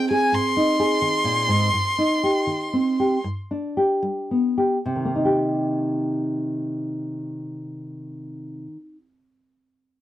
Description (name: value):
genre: acoustic folk-pop ballad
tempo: 36-44 BPM (dotted quarters)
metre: 6/8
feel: straight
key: C minor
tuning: A4 = 440 Hz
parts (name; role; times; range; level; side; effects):
- warm violin; melody; 0.0-3.2 s; Ab5 to C6; -22 LUFS; equal; slapback echo
- nylon-string guitar; accompaniment; 0.0-9.1 s; G2 to Ab4; -22 LUFS; equal; none
room: light reverb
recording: dry, close 1970s-style studio recording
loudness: -20 LUFS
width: side -13 dB against mid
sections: 0.0-4.8 A section; 4.8-8.1 B section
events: slowing down 0.0-4.8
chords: 0.0 Abadd9; 1.7 Cm/G; 3.2 G; 4.8 Cm7